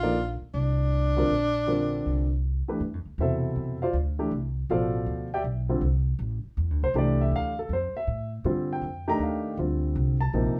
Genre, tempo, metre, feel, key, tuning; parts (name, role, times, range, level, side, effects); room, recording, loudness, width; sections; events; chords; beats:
modal jazz; 160 BPM; 4/4; swing 65% on 8ths; A4 = 441 Hz
bright tenor saxophone; melody; 0.0-2.4 s; D4 to F4; -30 LUFS; equal
warm concert grand piano; accompaniment; 0.0-10.6 s; B2 to Bb5; -30 LUFS; equal
upright bass; bass; 0.0-10.6 s; F1 to A2; -30 LUFS; equal
moderate studio reverb, RT60 0.6 s; band playing live in one room; -27 LUFS; mono
0.0-2.8 A section; 2.8-10.6 B section
0.0 Fsus4; 2.8 G13sus4; 8.8 F13sus4
0.17 0.55 0.93 | 1.30 1.68 2.05 2.43 | 2.81 3.18 3.56 3.94 | 4.31 4.69 5.06 5.44 | 5.82 6.19 6.57 6.94 | 7.32 7.70 8.07 8.45 | 8.82 9.20 9.58 9.96 | 10.33